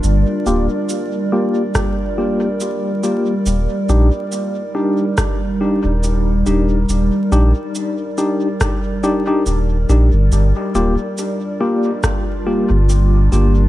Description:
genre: ambient dub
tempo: 70 BPM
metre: 4/4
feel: swing 55% on 16ths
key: G minor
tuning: A4 = 440 Hz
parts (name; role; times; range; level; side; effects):
- warbly tape-like pad; sustained chords; 0.0-13.7 s; G3 to D5; -21 LUFS; right 1 dB; chorus, built-in reverb
- warm sub bass; bass; 0.0-13.7 s; D1 to Bb1; -14 LUFS; equal; none
- electronic cabasa and rim click; drums; 0.0-13.5 s; none; -26 LUFS; right 1 dB; studio ambience, dub echo
- tine electric piano; stabs; 0.5-13.6 s; Bb3 to G4; -20 LUFS; left 2 dB; medium tremolo, low-pass filter, dub echo
- electronic kick drum; drums; 1.8-12.2 s; none; -21 LUFS; equal; studio ambience
room: light reverb, digital ambience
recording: dark, warm production, vinyl crackle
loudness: -14 LUFS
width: side -15 dB against mid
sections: 0.0-13.7 A section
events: filter sweep on tine electric piano 0.0-13.7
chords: 0.0 Gm7; 3.5 Ebmaj7; 10.3 Gm7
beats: | 0.04 0.89 1.75 2.61 | 3.46 4.32 5.18 6.04 | 6.89 7.75 8.61 9.46 | 10.32 11.18 12.04 12.89

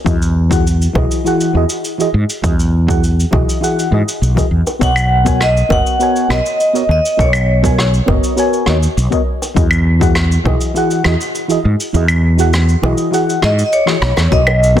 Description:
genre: sunset chillout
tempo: 101 BPM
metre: 4/4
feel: straight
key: unclear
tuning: A4 = 443 Hz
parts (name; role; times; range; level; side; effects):
- mellow FM electric piano; accompaniment; 0.0-14.8 s; E3 to G#5; -18 LUFS; moving between left 8 dB and right 6 dB; chorus, auto-pan, tape echo
- mellow fretless electric bass; bass; 0.1-14.8 s; F#1 to G#2; -13 LUFS; equal; none
- cabasa, claves and rim click; drums; 0.1-14.7 s; none; -20 LUFS; equal; none
- electronic kick drum; drums; 0.1-10.6, 14.3-14.8 s; none; -18 LUFS; equal; overdrive
- bongos; percussion; 1.0-14.6 s; none; -25 LUFS; equal; none
- vibraphone with medium hard mallets; melody; 4.8-8.9, 13.4-14.8 s; C#5 to F#5; -16 LUFS; equal; tape echo
room: light reverb, small room ambience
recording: dense, heavily limited modern master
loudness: -11 LUFS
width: side -11 dB against mid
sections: 0.0-14.3 A section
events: kick drops out 11.9-14.3; drum fill 13.9-14.3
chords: 0.1 Emaj7; 4.8 Bmaj9; 9.6 Emaj7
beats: | 0.06 0.66 1.25 1.85 | 2.44 3.03 3.63 4.22 | 4.82 5.41 6.00 6.60 | 7.19 7.79 8.38 8.97 | 9.57 10.16 10.76 11.35 | 11.95 12.54 13.13 13.73 | 14.32

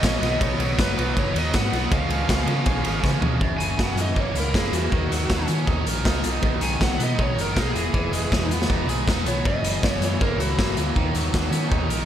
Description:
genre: indie rock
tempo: 159 BPM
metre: 4/4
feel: straight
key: F# mixolydian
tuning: A4 = 443 Hz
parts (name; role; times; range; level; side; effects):
- bluesy overdriven lead guitar; melody; 0.0-10.8 s; F#4 to G#5; -30 LUFS; equal; distortion, slapback echo
- biting overdriven guitar; riff; 0.0-12.1 s; F#2 to A#4; -27 LUFS; right 1 dB; none
- fingered electric bass; bass; 0.0-12.0 s; E1 to D#3; -26 LUFS; equal; none
- raw garage drum kit; drums; 0.0-12.0 s; hi-hat, kick drum, ride cymbal, snare drum, toms; -23 LUFS; equal; none
room: light reverb, studio reverb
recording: none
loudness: -20 LUFS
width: side -10 dB against mid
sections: 0.0-3.4 A section; 3.4-12.1 B section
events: drum fill 3.0-3.4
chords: 0.2 B; 1.9 C#; 3.4 F#7; 4.9 D#m7; 6.2 Bmaj7; 7.7 Emaj7; 9.4 F#7; 11.0 D#m7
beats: 0.03 | 0.40 0.78 1.16 1.53 | 1.91 2.29 2.66 3.04 | 3.41 3.79 4.17 4.54 | 4.92 5.30 5.67 6.05 | 6.43 6.81 7.18 7.56 | 7.94 8.31 8.69 9.07 | 9.45 9.82 10.20 10.58 | 10.96 11.33 11.71

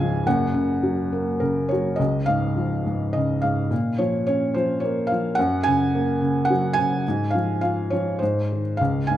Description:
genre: classical, lyrical solo piano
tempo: 105 BPM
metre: 3/4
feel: uneven beats, rubato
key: Db major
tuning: A4 = 441 Hz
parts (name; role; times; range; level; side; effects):
- felt-muted upright piano; solo; 0.0-9.2 s; F#1 to G#5; -20 LUFS; equal; none
room: moderate recital hall reverb, RT60 1.7 s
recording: none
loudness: -20 LUFS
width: side -12 dB against mid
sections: 0.0-2.0 A section; 2.0-9.2 B section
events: none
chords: 0.3 F#; 2.0 Db; 3.7 Bbm; 5.4 Gb; 7.1 Db/Ab; 8.2 Ab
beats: | 0.26 0.82 1.41 | 2.00 2.57 3.14 | 3.71 4.27 4.82 | 5.37 5.93 6.49 | 7.05 7.62 8.21 | 8.80

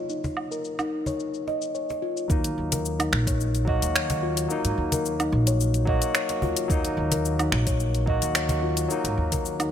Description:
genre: organic downtempo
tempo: 109 BPM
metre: 4/4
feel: straight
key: Eb minor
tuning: A4 = 439 Hz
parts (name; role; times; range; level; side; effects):
- barky tine electric piano; accompaniment; 0.0-9.7 s; Gb3 to Gb4; -31 LUFS; left 2 dB; auto-pan, sidechain pumping, digital delay
- steel tongue drum; arpeggios; 0.1-9.7 s; Eb4 to Eb5; -28 LUFS; left 1 dB; digital delay
- afro-pop drum kit; drums; 0.1-9.7 s; cabasa, finger snaps, hi-hat, woodblock; -28 LUFS; equal; low-pass filter on perc, low-pass filter on hats, low-pass filter on snare
- cajon; percussion; 0.2-9.4 s; none; -34 LUFS; left 1 dB; none
- upright bass; bass; 2.3-9.7 s; Bb1 to Ab2; -26 LUFS; equal; sidechain pumping
- electronic kick drum; drums; 2.3-9.4 s; none; -27 LUFS; right 1 dB; none
room: light reverb, small room reverb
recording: bright 1980s-style digital production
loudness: -23 LUFS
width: side -9 dB against mid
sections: 0.0-2.3 A section; 2.3-9.7 B section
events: filter sweep on tine electric piano 0.0-2.3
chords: 0.0 Ebm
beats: | 0.10 0.65 1.20 1.75 | 2.30 2.85 3.40 3.95 | 4.50 5.05 5.60 6.15 | 6.70 7.25 7.80 8.35 | 8.90 9.45

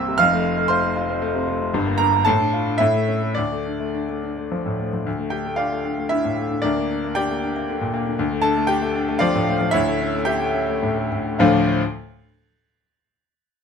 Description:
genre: classical, virtuoso piano study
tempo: 99-121 BPM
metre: 3/4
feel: rubato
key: D minor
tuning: A4 = 439 Hz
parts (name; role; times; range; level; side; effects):
- warm grand piano; solo; 0.0-11.8 s; F1 to G6; -19 LUFS; left 1 dB; none
room: light reverb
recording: minimal, uncompressed stereo recording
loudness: -19 LUFS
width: side -6 dB against mid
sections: 0.0-5.1 A section; 5.1-11.4 B section; 11.4-13.0 C section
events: none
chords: 0.2 F; 1.7 Gm; 2.3 Dm/A; 2.8 A; 3.4 Dm; 6.6 Gm/D; 8.2 Dm; 9.7 A7/D; 11.4 Dm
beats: | 0.20 0.71 1.23 | 1.74 2.27 2.80 | 3.36 3.94 4.51 | 5.07 5.59 6.12 | 6.63 7.17 7.68 | 8.19 8.69 9.21 | 9.73 10.27 10.82 | 11.40

